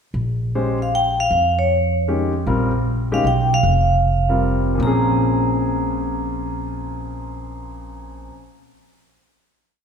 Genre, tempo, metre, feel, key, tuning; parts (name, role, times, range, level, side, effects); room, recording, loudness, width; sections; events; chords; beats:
modal jazz; 154 BPM; 3/4; swing 66% on 8ths; Bb dorian; A4 = 440 Hz
upright bass; bass; 0.1-8.3 s; F1 to F2; -22 LUFS; right 1 dB
warm concert grand piano; accompaniment; 0.6-8.4 s; Bb2 to C5; -22 LUFS; left 2 dB
vibraphone with medium hard mallets; melody; 0.8-8.3 s; Db5 to Bb5; -21 LUFS; equal
moderate scoring stage reverb, RT60 1.7 s; recorded in a church or concert hall; -17 LUFS; side -6 dB against mid
0.1-4.8 A section; 4.8-7.1 final chord
0.1 Bbm9
| 0.14 0.53 0.92 | 1.31 1.70 2.08 | 2.47 2.86 3.25 | 3.64 4.03 4.41 | 4.80 5.19 5.58 | 5.97 6.36 6.75